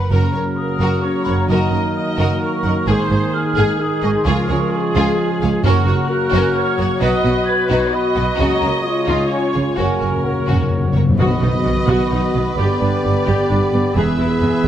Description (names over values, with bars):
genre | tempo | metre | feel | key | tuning
cinematic | 130 BPM | 3/4 | straight | F# major | A4 = 441 Hz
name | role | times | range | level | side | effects
clear symphonic violin section | melody | 0.0-14.7 s | E#4 to F#5 | -29 LUFS | left 3 dB | none
mellow hollow flute section | second line | 0.0-14.7 s | F#5 to G#6 | -26 LUFS | right 1 dB | none
warm symphonic violin section | second line | 0.0-14.7 s | C#4 to D#5 | -26 LUFS | left 2 dB | none
rich symphonic viola section | accompaniment | 0.0-14.5 s | B3 to D#5 | -25 LUFS | right 1 dB | none
warm clarinet | second line | 0.1-14.7 s | C#4 to A#4 | -25 LUFS | left 1 dB | none
warm oboe | second line | 0.1-14.7 s | G#4 to D#5 | -27 LUFS | right 1 dB | none
clear trombone section | sustained chords | 0.1-14.7 s | B2 to B3 | -25 LUFS | right 3 dB | none
mellow French horn section | sustained chords | 0.1-14.7 s | G#3 to G#4 | -24 LUFS | left 4 dB | none
clear chamber cello section | bass | 0.1-14.7 s | C#2 to C#3 | -22 LUFS | right 2 dB | none
rich symphonic double bass section | bass | 0.1-14.7 s | E1 to C#2 | -22 LUFS | right 2 dB | none
timpani | percussion | 0.1-0.8, 4.3-6.3, 9.8-11.8 s | F#2 to C#3 | -22 LUFS | left 2 dB | none
room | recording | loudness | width
light reverb | none | -15 LUFS | side -10 dB against mid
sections
0.1-11.2 A section; 11.2-14.7 B section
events
timpani fill 9.8-11.2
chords
0.1 F#; 1.5 D#m/F#; 2.9 G#; 4.3 C#; 5.6 F#; 7.0 B; 8.4 F#/C#; 8.8 C#add9; 9.8 F#; 11.2 B; 12.6 G; 14.0 E